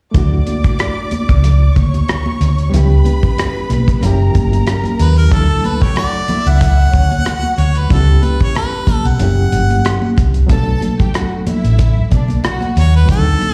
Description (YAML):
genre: lush 1970s-style soul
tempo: 93 BPM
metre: 4/4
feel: swing 54% on 16ths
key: D major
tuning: A4 = 442 Hz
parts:
  - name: warm studio violin section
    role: second line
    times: 0.1-12.9 s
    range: C#4 to D6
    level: -28 LUFS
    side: equal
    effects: slapback echo
  - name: barky reed electric piano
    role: accompaniment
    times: 0.1-13.5 s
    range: F#3 to A4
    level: -24 LUFS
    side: equal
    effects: overdrive, fast tremolo, slapback echo
  - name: hollow-body short-scale fingered electric bass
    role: bass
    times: 0.1-13.4 s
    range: F#1 to Eb2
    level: -14 LUFS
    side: equal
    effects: none
  - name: cloth-damped thuddy drum kit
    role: drums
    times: 0.1-13.5 s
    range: hi-hat, kick drum, rim click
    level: -19 LUFS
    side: equal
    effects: none
  - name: congas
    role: percussion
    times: 0.2-13.5 s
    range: none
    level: -26 LUFS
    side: equal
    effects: slapback echo
  - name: bright harmonica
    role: melody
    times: 5.0-13.5 s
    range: A4 to F#5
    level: -22 LUFS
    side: equal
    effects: slapback echo
room: light reverb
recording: live gig heard through the venue's PA, recital hall reverb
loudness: -14 LUFS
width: mono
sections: 0.1-5.3 A section; 5.3-13.5 B section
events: none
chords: 0.1 Dmaj9; 2.7 C#m7b5; 4.0 F#7b9; 5.3 Dmaj9; 7.9 C#m7b5; 9.2 F#7b9; 10.5 Bm7